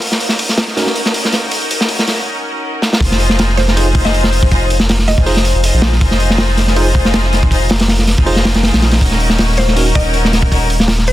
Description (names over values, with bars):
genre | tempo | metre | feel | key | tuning
drum and bass, jungle | 160 BPM | 4/4 | straight | F phrygian | A4 = 441 Hz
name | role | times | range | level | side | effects
bright symphonic string section | sustained chords | 0.0-10.6 s | Db4 to C5 | -20 LUFS | left 2 dB | none
crunchy breakbeat drum kit | drums | 0.0-11.1 s | hi-hat, kick drum, snare drum | -14 LUFS | equal | high-pass filter on kick, high-pass filter on hats, high-pass filter on snare, high-pass filter on room
overdriven tine electric piano | stabs | 0.8-0.9, 3.8-9.9 s | Db4 to C5 | -23 LUFS | right 2 dB | none
saturated sub bass | bass | 3.0-11.1 s | Eb1 to Bb1 | -14 LUFS | equal | none
mallet-like synth pluck | melody | 3.6-5.5, 9.6-11.1 s | C5 to Eb5 | -23 LUFS | equal | chorus, dub echo
room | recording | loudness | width
light reverb, studio reverb | dense, heavily limited modern master | -11 LUFS | side -14 dB against mid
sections
0.0-3.0 A section; 3.0-11.1 B section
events
drum fill 2.8; drop 3.0-11.1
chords
0.0 Ebm7; 3.0 Fm7; 9.0 Ebm7